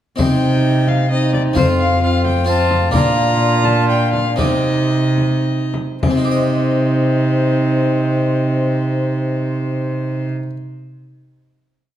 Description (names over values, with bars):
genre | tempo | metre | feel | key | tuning
classical, renaissance-style consort dance | 101-132 BPM | 3/4 | straight | C minor | A4 = 440 Hz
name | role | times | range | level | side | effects
rich violin | melody | 0.2-10.3 s | C5 to Bb5 | -24 LUFS | left 5 dB | none
warm viola | second line | 0.2-10.3 s | Eb4 to F4 | -21 LUFS | right 4 dB | none
clear trombone | accompaniment | 0.2-10.3 s | C4 to D4 | -23 LUFS | left 4 dB | none
harpsichord | accompaniment | 0.2-10.6 s | F2 to Eb5 | -22 LUFS | left 3 dB | none
warm cello | bass | 0.2-10.3 s | F2 to C3 | -18 LUFS | right 2 dB | none
frame drum | percussion | 0.2-6.3 s | none | -22 LUFS | left 2 dB | none
room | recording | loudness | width
moderate recital hall reverb, RT60 1.7 s | dark, warm production | -14 LUFS | side -11 dB against mid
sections
0.2-6.0 A section; 6.0-9.6 final chord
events
slowing down 2.3-6.0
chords
0.2 Cm; 1.6 F; 2.9 Bb; 4.4 Cm